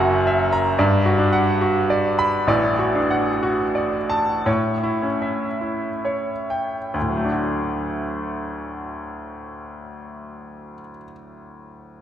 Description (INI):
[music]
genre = classical, romantic character piece for solo piano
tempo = 43-78 BPM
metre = 4/4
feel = rubato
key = D major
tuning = A4 = 443 Hz
[part]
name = clear grand piano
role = solo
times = 0.0-12.0 s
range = F#1 to B5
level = -20 LUFS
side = equal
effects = none
[sound]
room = wet church reverb, RT60 3.6 s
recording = recorded in a church or concert hall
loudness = -19 LUFS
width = side -10 dB against mid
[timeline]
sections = 0.0-6.9 A section; 6.9-12.0 B section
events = slowing down 0.0-6.9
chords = 0.0 F#7; 0.8 Gmaj7; 2.5 D/A; 4.5 A7; 6.9 D